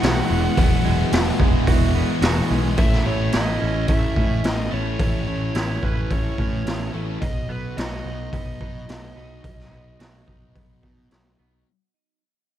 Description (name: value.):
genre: rock, shoegaze and dream pop.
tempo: 108 BPM.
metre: 4/4.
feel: straight.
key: A lydian.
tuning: A4 = 440 Hz.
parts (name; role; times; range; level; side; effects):
dark smooth lead guitar; melody; 0.0-11.1 s; B4 to F#5; -31 LUFS; right 1 dB; overdrive, analog delay.
twelve-string electric guitar; arpeggios; 0.0-11.7 s; F#3 to A4; -31 LUFS; right 9 dB; lush chorus, analog delay.
distorted electric guitar; riff; 0.0-7.2 s; A2 to E4; -30 LUFS; equal; overdrive.
thick fuzz guitar; riff; 0.0-11.7 s; E2 to F#4; -29 LUFS; left 14 dB; distortion, analog chorus.
twangy electric guitar; riff; 0.0-11.7 s; E2 to F#4; -31 LUFS; right 13 dB; reverse reverb.
fuzz picked electric bass; bass; 0.0-11.6 s; E1 to B2; -25 LUFS; equal; overdrive.
raw garage drum kit; drums; 0.0-11.2 s; hi-hat, kick drum, snare drum; -22 LUFS; equal; none.
room: little or no reverb.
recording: dark, warm production.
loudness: -19 LUFS.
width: side -11 dB against mid.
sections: 0.0-2.8 A section; 2.8-11.7 B section.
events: fade-out 2.8-11.7.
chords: 0.0 Eadd9; 2.8 A; 7.2 B.